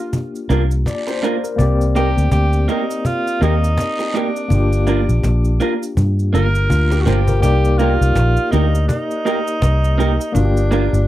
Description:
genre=lovers rock reggae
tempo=82 BPM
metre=4/4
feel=swing 59% on 16ths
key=C minor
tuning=A4 = 440 Hz
part: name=warm tenor saxophone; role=melody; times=0.0-11.1 s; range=D4 to Bb4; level=-22 LUFS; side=right 1 dB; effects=tape echo
part: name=barky tine electric piano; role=accompaniment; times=0.0-11.1 s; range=Bb3 to D5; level=-23 LUFS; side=left 3 dB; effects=fast tremolo, slapback echo
part: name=cajon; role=drums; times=0.1-10.8 s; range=none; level=-21 LUFS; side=equal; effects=none
part: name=cabasa and guiro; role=percussion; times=0.1-11.1 s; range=none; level=-35 LUFS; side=right 4 dB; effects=none
part: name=electric guitar through a small old amp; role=stabs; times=0.5-10.8 s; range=Bb3 to Bb4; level=-20 LUFS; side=right 3 dB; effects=slapback echo
part: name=vintage muted fingered electric bass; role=bass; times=0.5-11.1 s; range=G1 to G2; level=-15 LUFS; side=equal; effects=none
room=little or no reverb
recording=dry, close 1970s-style studio recording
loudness=-14 LUFS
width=side -14 dB against mid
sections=0.0-7.4 A section; 7.4-11.1 B section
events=drum fill 6.7-7.4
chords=0.0 Gm7; 1.6 Cm7; 4.5 Gm7; 7.4 Cm7; 10.3 Gm7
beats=0.13 0.86 | 1.59 2.32 3.05 3.78 | 4.51 5.24 5.97 6.70 | 7.43 8.16 8.89 9.62 | 10.35

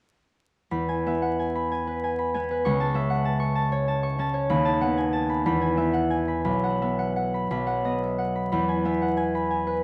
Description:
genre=classical, solo harp piece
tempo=56-68 BPM (dotted quarters)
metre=6/8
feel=rubato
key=E major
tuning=A4 = 440 Hz
part: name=concert harp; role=solo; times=0.7-9.8 s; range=B1 to C#6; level=-25 LUFS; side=equal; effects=none
room=light reverb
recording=close, detailed microphones, vinyl crackle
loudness=-25 LUFS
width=mono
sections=0.7-9.8 A section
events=none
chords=0.7 E; 2.6 A/C#; 4.5 B7/D#; 5.4 E; 6.4 Bsus4; 7.5 B; 8.5 E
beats=| 0.72 1.71 | 2.64 3.55 | 4.48 5.45 | 6.45 7.50 | 8.52 9.52

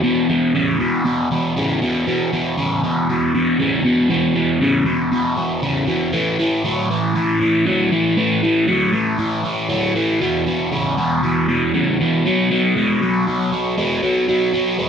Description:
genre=rock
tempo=118 BPM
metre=4/4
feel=straight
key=E major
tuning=A4 = 440 Hz
part: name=crunchy overdriven guitar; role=solo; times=0.0-14.9 s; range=E2 to G#3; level=-16 LUFS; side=equal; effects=phaser
room=moderate large studio reverb, RT60 1.0 s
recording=band playing live in one room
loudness=-16 LUFS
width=side -7 dB against mid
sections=0.0-14.9 A section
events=none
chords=0.0 E5; 6.1 A5; 10.2 E5; 12.2 B5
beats=| 0.03 0.54 1.05 1.56 | 2.07 2.58 3.09 3.60 | 4.11 4.62 5.12 5.63 | 6.14 6.65 7.16 7.67 | 8.18 8.69 9.20 9.70 | 10.21 10.72 11.23 11.74 | 12.25 12.76 13.27 13.78 | 14.28 14.79

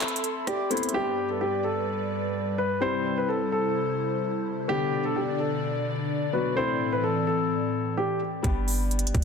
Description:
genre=hip hop, trap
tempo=128 BPM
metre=4/4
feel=half-time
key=G major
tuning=A4 = 440 Hz
part: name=dark concert grand piano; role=melody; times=0.0-8.2 s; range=G4 to C5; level=-28 LUFS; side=left 1 dB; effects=digital delay
part: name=felt-muted upright piano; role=accompaniment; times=0.0-9.2 s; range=D3 to G4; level=-32 LUFS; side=left 6 dB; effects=none
part: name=airy breathy pad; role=sustained chords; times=0.0-8.4 s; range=G2 to C6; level=-30 LUFS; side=equal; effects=chorus
part: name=trap drum kit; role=drums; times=0.0-0.9, 8.4-9.2 s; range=handclaps, hi-hat, kick drum, rim click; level=-28 LUFS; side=right 1 dB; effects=none
part: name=breathy flute-like synth lead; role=second line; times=0.5-0.9 s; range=C5 to D5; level=-38 LUFS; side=right 4 dB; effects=chorus, digital delay
part: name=clean 808-style bass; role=bass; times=8.4-9.2 s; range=G1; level=-27 LUFS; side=equal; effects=none
room=light reverb, digital ambience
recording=dense, heavily limited modern master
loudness=-24 LUFS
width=side -6 dB against mid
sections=0.9-8.4 A section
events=break 0.0-0.9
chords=0.0 Amadd9; 0.9 G; 2.8 C; 4.7 Bm; 6.6 Am; 8.4 G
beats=0.00 0.47 | 0.94 1.41 1.88 2.35 | 2.82 3.29 3.75 4.22 | 4.69 5.16 5.63 6.10 | 6.57 7.04 7.50 7.97 | 8.44 8.91

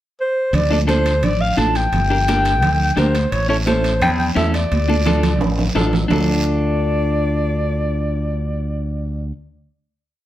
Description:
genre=latin, cumbia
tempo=172 BPM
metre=4/4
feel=straight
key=D minor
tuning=A4 = 440 Hz
part: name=warm clarinet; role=melody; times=0.2-9.3 s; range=C5 to A5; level=-21 LUFS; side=left 1 dB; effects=plate reverb
part: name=modern bright fingered electric bass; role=bass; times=0.5-9.3 s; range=G1 to E2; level=-19 LUFS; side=equal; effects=none
part: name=congas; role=percussion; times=0.5-6.2 s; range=none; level=-22 LUFS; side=right 2 dB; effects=none
part: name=guiro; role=percussion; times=0.5-6.2 s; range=none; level=-32 LUFS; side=right 3 dB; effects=none
part: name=timbales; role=percussion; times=0.5-6.2 s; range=none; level=-29 LUFS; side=right 2 dB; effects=none
part: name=clean electric guitar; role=accompaniment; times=0.7-9.3 s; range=C#4 to Bb4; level=-23 LUFS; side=left 2 dB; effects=none
room=wet studio reverb, RT60 0.8 s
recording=heard from further back in the room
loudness=-16 LUFS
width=side -13 dB against mid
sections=0.0-0.5 pickup bar; 0.5-6.1 A section; 6.1-8.9 final chord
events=drum fill 4.7-6.1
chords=0.0 N.C.; 0.5 Dm; 1.9 Gm; 3.3 A; 4.7 Dm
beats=0.19 | 0.54 0.88 1.23 1.58 | 1.93 2.28 2.63 2.98 | 3.32 3.67 4.02 4.37 | 4.72 5.06 5.41 5.76 | 6.11 6.45 6.80 7.15 | 7.49 7.84 8.19 8.53

